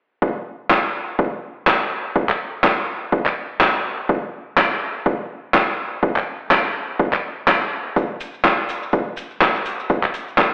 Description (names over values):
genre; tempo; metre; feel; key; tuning
house; 124 BPM; 4/4; swing 56% on 16ths; none; none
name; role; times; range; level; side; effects
electronic kick drum; drums; 0.2-10.5 s; none; -21 LUFS; equal; overdrive, high-pass filter on kick, high-pass filter on room
garage drum kit; drums; 0.7-10.5 s; handclaps, hi-hat; -18 LUFS; equal; none
maracas; percussion; 8.0-10.5 s; none; -36 LUFS; equal; none
room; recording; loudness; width
wet lush hall reverb, RT60 1.7 s; played on a big sound system in a bare room, stone room reverb, telephone sound; -18 LUFS; side -31 dB against mid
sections
0.2-10.5 A section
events
none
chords
none